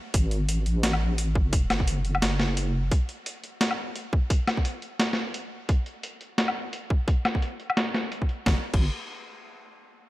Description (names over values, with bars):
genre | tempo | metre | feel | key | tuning
half-time drum and bass | 173 BPM | 4/4 | swing 57% on 16ths, half-time | unclear | A4 = 441 Hz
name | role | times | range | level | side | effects
deep soft wobble bass | bass | 0.1-2.9, 8.5-8.9 s | F#1 to A1 | -26 LUFS | equal | chorus
boom bap sampler-style drum kit | drums | 0.1-8.8 s | crash cymbal, hi-hat, snare drum, woodblock | -28 LUFS | equal | low-pass filter on hats, low-pass filter on snare, low-pass filter on perc, low-pass filter on cymbals, low-pass filter on room
electronic kick drum | drums | 0.1-8.8 s | none | -23 LUFS | equal | none
room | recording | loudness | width
little or no reverb | none | -24 LUFS | side -17 dB against mid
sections
0.0-8.5 A section; 8.5-9.9 B section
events
filter sweep on drum 0.0-8.5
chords
none